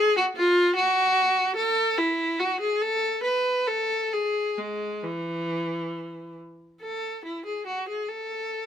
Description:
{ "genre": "classical, baroque-style suite movement for unaccompanied viola", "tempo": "66-74 BPM", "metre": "3/4", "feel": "rubato", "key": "unclear", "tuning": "A4 = 445 Hz", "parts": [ { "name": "rich viola", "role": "solo", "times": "0.0-8.7 s", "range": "E3 to B4", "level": "-23 LUFS", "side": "equal", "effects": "none" } ], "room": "light reverb", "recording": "minimal, uncompressed stereo recording", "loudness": "-23 LUFS", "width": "side -9 dB against mid", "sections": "0.0-6.8 A section; 6.8-8.7 A section", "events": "none", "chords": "none", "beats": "0.76 | 1.57 2.40 3.25 | 4.14 5.05 5.95 | 6.83 7.69 8.53" }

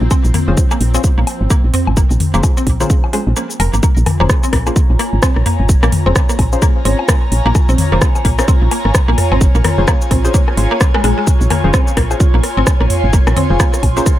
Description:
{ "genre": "minimal techno", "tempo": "129 BPM", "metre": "4/4", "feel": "swing 59% on 16ths", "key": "Bb minor", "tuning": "A4 = 440 Hz", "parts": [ { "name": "woody FM bass", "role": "bass", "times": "0.0-14.0 s", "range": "F1 to Bb1", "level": "-15 LUFS", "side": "equal", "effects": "sidechain pumping" }, { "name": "swarming drone", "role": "texture", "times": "0.0-3.9 s", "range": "F3 to C4", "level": "-29 LUFS", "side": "left 1 dB", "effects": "built-in reverb, phaser, sidechain pumping" }, { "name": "mallet-like synth pluck", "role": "riff", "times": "0.1-14.0 s", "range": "Ab3 to Bb4", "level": "-21 LUFS", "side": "equal", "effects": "ensemble chorus, sidechain pumping, digital delay" }, { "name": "electronic kick drum", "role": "drums", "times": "0.1-14.2 s", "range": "none", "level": "-13 LUFS", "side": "equal", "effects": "none" }, { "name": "house drum kit", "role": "drums", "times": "0.1-14.2 s", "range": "cabasa, hi-hat, rim click", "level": "-21 LUFS", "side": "equal", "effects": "none" }, { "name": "booming analog drum machine", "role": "percussion", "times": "0.1-14.2 s", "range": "rim click, toms, woodblock", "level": "-19 LUFS", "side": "left 2 dB", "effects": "overdrive" }, { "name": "filtered dub chord stab", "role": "stabs", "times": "0.5-14.1 s", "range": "Db4 to C5", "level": "-23 LUFS", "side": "left 2 dB", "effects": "chorus, cassette tape, digital delay" }, { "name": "airy breathy pad", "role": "texture", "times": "4.1-14.2 s", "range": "F4 to C6", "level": "-21 LUFS", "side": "right 1 dB", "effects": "chorus, phaser, sidechain pumping" } ], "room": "little or no reverb", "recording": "none", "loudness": "-11 LUFS", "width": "side -13 dB against mid", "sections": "0.0-3.8 A section; 3.8-14.2 B section", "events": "break 3.4-3.8; drop 3.8-14.2", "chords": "0.0 Bbm7", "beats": "| 0.11 0.57 1.04 1.50 | 1.97 2.44 2.90 3.37 | 3.83 4.29 4.76 5.22 | 5.69 6.16 6.62 7.09 | 7.55 8.02 8.48 8.95 | 9.41 9.88 10.34 10.81 | 11.27 11.74 12.20 12.67 | 13.13 13.60 14.06" }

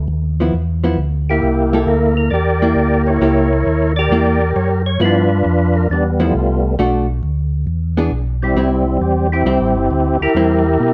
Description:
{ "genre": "soul jazz organ trio", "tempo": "134 BPM", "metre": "4/4", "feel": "swing 68% on 8ths", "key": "unclear", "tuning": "A4 = 436 Hz", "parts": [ { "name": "mellow tonewheel organ", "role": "bass", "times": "0.0-10.9 s", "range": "G1 to B2", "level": "-20 LUFS", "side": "equal", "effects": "chorus vibrato, slow rotary speaker" }, { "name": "vintage hollow-body jazz guitar", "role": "accompaniment", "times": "0.4-10.6 s", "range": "E3 to A4", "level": "-21 LUFS", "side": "equal", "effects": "none" }, { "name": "overdriven tonewheel organ", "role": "melody", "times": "1.3-10.9 s", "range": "G3 to D5", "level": "-18 LUFS", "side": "equal", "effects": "chorus vibrato, stopped rotary speaker" } ], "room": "moderate large studio reverb, RT60 1.0 s", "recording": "none", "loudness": "-16 LUFS", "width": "mono", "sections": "0.0-10.9 A section", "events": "none", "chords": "0.0 G13 (rootless); 1.4 C13; 3.2 C#dim7; 5.0 G13; 6.8 Bm7; 7.7 E7; 8.6 Am7", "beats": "0.09 0.53 0.98 | 1.42 1.87 2.32 2.76 | 3.21 3.65 4.10 4.54 | 4.99 5.44 5.88 6.33 | 6.78 7.22 7.67 8.11 | 8.56 9.01 9.45 9.90 | 10.35 10.79" }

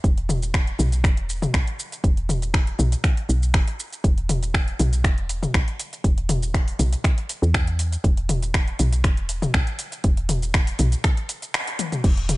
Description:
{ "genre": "afro house", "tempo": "120 BPM", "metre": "4/4", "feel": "straight", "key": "unclear", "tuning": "A4 = 440 Hz", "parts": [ { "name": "woody FM bass", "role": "bass", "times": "0.0-12.4 s", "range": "E1 to E2", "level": "-23 LUFS", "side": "equal", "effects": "sidechain pumping" }, { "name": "deep house drum kit", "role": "drums", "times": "0.0-12.4 s", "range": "crash cymbal, finger snaps, hi-hat, shaker, toms", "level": "-25 LUFS", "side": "left 1 dB", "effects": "none" }, { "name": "electronic kick drum", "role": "drums", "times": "0.0-12.1 s", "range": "none", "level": "-20 LUFS", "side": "equal", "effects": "none" } ], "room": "digital ambience", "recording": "nothing above 10.4 kHz", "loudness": "-20 LUFS", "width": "side -20 dB against mid", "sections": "0.0-12.0 A section", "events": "band accent 11.5; drum fill 11.8", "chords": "none", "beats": "| 0.04 0.54 1.04 1.54 | 2.04 2.54 3.04 3.54 | 4.04 4.54 5.04 5.54 | 6.04 6.54 7.04 7.54 | 8.04 8.54 9.04 9.54 | 10.04 10.54 11.04 11.54 | 12.04" }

